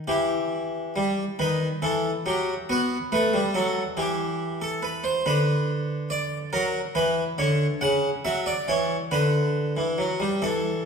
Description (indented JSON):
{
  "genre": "classical, baroque-style two-part invention for harpsichord",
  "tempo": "46 BPM (dotted quarters)",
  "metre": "6/8",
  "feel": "straight",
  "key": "E minor",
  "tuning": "A4 = 440 Hz",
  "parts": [
    { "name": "harpsichord", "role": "solo", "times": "0.0-10.9 s", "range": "C#3 to F#5", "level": "-23 LUFS", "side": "equal", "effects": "none" }
  ],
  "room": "wet recital hall reverb, RT60 1.7 s",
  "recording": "heard from further back in the room",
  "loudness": "-23 LUFS",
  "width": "side -6 dB against mid",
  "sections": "0.1-10.4 A section",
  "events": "none",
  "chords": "0.1 Em; 1.4 B/D#; 2.7 B5; 4.0 Em; 5.3 Bm/D; 6.5 F#; 7.8 F#5/C#; 9.1 Bm/D",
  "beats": "| 0.08 1.40 | 2.69 3.97 | 5.25 6.53 | 7.82 9.12 | 10.43"
}